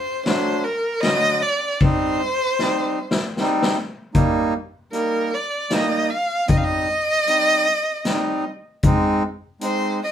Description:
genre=klezmer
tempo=77 BPM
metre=3/4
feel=straight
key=C dorian sharp4, Eb major from 4.2 s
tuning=A4 = 437 Hz
part: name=warm violin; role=melody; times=0.0-10.1 s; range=Bb4 to F5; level=-21 LUFS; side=equal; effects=none
part: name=accordion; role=accompaniment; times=0.3-10.0 s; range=D3 to Eb4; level=-22 LUFS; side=right 1 dB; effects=none
part: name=street-band drum kit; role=drums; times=0.3-9.8 s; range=hi-hat, kick drum, ride cymbal, snare drum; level=-21 LUFS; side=left 2 dB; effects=none
room=wet studio ambience, RT60 0.5 s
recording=band playing live in one room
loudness=-18 LUFS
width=side -9 dB against mid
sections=0.0-4.2 A section; 4.2-10.1 B section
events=drum fill 2.6-4.2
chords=0.0 D; 1.8 Cm; 4.2 Eb; 6.5 Cm; 8.8 Ab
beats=0.26 1.03 | 1.81 2.59 3.37 | 4.15 4.93 5.71 | 6.49 7.27 8.05 | 8.83 9.61

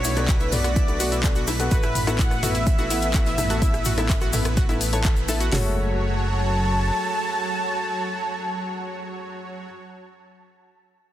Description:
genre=progressive house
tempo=126 BPM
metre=4/4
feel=straight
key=F# minor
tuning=A4 = 440 Hz
part: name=wide unison lead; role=melody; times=0.0-9.6 s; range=B4 to A5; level=-28 LUFS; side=equal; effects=cassette tape, sidechain pumping, dub echo
part: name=supersaw pad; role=sustained chords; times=0.0-9.6 s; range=F#3 to C#5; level=-31 LUFS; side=right 1 dB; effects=sidechain pumping
part: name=analog pluck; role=arpeggios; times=0.0-5.7 s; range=E4 to C#5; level=-32 LUFS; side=right 1 dB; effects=chorus, sidechain pumping, dub echo
part: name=fat analog bass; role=bass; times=0.0-6.9 s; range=F#1 to B1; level=-25 LUFS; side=equal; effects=sidechain pumping
part: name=house drum kit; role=drums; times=0.0-5.5 s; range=handclaps, hi-hat, rim click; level=-30 LUFS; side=left 2 dB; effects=overdrive
part: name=jazz brush drum kit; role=drums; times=0.0-5.4 s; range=hi-hat, snare drum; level=-40 LUFS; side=right 4 dB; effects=none
part: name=cabasa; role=percussion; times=0.0-5.5 s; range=none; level=-34 LUFS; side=left 4 dB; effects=none
part: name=drifting glass-harmonics texture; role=texture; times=0.0-5.5 s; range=B6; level=-42 LUFS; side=right 9 dB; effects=none
part: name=felt-muted upright piano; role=stabs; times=0.2-9.6 s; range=G#3 to A5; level=-31 LUFS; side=left 4 dB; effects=sidechain pumping, dub echo
part: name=punchy analog drum machine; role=percussion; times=0.2-5.4 s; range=congas, rim click, toms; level=-30 LUFS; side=equal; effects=soft clipping on snare, sidechain pumping on snare, sidechain pumping on perc, sidechain pumping on toms
part: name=house drum kit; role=drums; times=0.3-5.6 s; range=hi-hat, kick drum, snare drum, toms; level=-22 LUFS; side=equal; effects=overdrive
room=light reverb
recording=dense, heavily limited modern master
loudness=-20 LUFS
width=side -12 dB against mid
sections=0.0-5.5 A section; 5.5-9.3 B section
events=drop 0.0-5.5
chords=0.0 Bm7; 1.7 Asus2; 5.5 F#madd9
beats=0.29 0.76 1.24 | 1.72 2.19 2.67 3.14 | 3.62 4.10 4.57 5.05 | 5.52 6.00 6.48 6.95 | 7.43 7.91 8.38 8.86

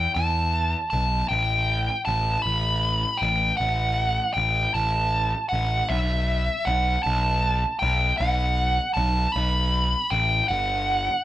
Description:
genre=post-rock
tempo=52 BPM (dotted quarters)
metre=6/8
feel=straight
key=unclear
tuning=A4 = 440 Hz
part: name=nasal lead guitar with a parked wah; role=melody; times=0.0-11.2 s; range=E5 to B5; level=-23 LUFS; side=equal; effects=overdrive
part: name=fuzz picked electric bass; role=bass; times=0.0-11.1 s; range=G1 to E2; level=-25 LUFS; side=equal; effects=overdrive
room=moderate large studio reverb, RT60 1.0 s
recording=band playing live in one room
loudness=-21 LUFS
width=side -14 dB against mid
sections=0.0-11.2 A section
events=build-up 0.0-11.2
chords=0.0 E5; 1.3 N.C.; 5.9 B5; 10.5 Gmaj7(no3)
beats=0.15 | 1.31 2.46 | 3.61 4.76 | 5.91 7.06 | 8.21 9.36 | 10.51

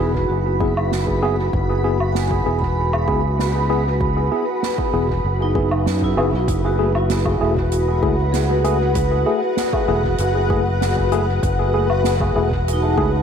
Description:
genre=ambient dub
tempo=97 BPM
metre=4/4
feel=straight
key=F# dorian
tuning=A4 = 440 Hz
part: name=granular cloud pad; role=sustained chords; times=0.0-13.2 s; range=F#4 to B5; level=-23 LUFS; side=left 2 dB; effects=built-in reverb
part: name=vibraphone with medium hard mallets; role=arpeggios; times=0.0-13.2 s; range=D#4 to B5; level=-26 LUFS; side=right 3 dB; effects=dub echo
part: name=tine electric piano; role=stabs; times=0.0-13.1 s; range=A3 to G#4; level=-24 LUFS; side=left 2 dB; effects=medium stereo tremolo, dub echo
part: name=fingered electric bass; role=bass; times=0.0-13.2 s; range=E1 to F#2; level=-21 LUFS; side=equal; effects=none
part: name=electronic kick drum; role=drums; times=0.1-13.1 s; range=none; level=-26 LUFS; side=equal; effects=overdrive
part: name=soft-mallet drum kit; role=drums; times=0.8-12.8 s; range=hi-hat, snare drum, woodblock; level=-28 LUFS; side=right 2 dB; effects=dub echo
room=light reverb, small room ambience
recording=none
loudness=-16 LUFS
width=side -7 dB against mid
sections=0.0-6.5 A section; 6.5-13.2 B section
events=filter sweep on vibraphone 0.0-6.5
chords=0.0 E; 6.5 F#m9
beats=0.29 0.91 | 1.53 2.15 2.77 3.39 | 4.01 4.62 5.24 5.86 | 6.48 7.10 7.72 8.34 | 8.96 9.57 10.19 10.81 | 11.43 12.05 12.67

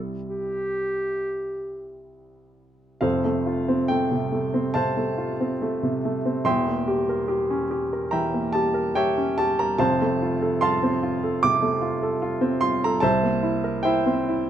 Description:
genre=classical, romantic duo for clarinet and grand piano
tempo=72 BPM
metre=4/4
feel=uneven beats, rubato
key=F major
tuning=A4 = 440 Hz
part: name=warm baby grand piano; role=accompaniment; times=0.0-14.5 s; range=E1 to D6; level=-21 LUFS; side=right 1 dB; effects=none
part: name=clear clarinet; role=melody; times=0.3-2.1 s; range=G4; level=-27 LUFS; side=equal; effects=none
room=moderate studio reverb, RT60 0.7 s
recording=minimal, uncompressed stereo recording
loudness=-21 LUFS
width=side -10 dB against mid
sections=0.0-3.0 A section; 3.0-14.5 B section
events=none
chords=0.0 C; 3.0 F; 6.5 Edim7; 9.8 F; 13.0 C7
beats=0.28 1.21 2.13 | 3.04 3.91 4.77 5.62 | 6.46 7.29 8.13 8.97 | 9.80 10.62 11.42 12.23 | 13.04 13.85

